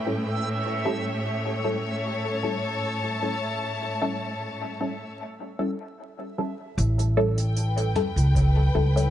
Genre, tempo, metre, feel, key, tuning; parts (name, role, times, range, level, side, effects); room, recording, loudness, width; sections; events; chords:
ambient dub; 76 BPM; 4/4; straight; A mixolydian; A4 = 441 Hz
warm studio string section; sustained chords; 0.0-9.1 s; A2 to A5; -29 LUFS; left 1 dB
backwards swelling texture; texture; 0.0-5.2 s; E5; -37 LUFS; right 3 dB; built-in reverb
filtered dub chord stab; stabs; 0.1-9.1 s; G3 to A4; -29 LUFS; left 1 dB; phaser, lush chorus, dub echo
upright bass; bass; 6.8-9.1 s; A1 to C#2; -21 LUFS; equal
soft brush drum kit; drums; 6.8-9.1 s; hi-hat, toms; -36 LUFS; right 1 dB; low-pass filter on hats, low-pass filter on toms, low-pass filter on snare, low-pass filter on room
electronic kick drum; drums; 8.4-8.5 s; -28 LUFS; equal; overdrive
light reverb, small room ambience; vinyl crackle, nothing above 10.5 kHz; -23 LUFS; side -11 dB against mid
0.0-6.8 A section; 6.8-9.1 B section
break 5.2-6.8
0.0 A7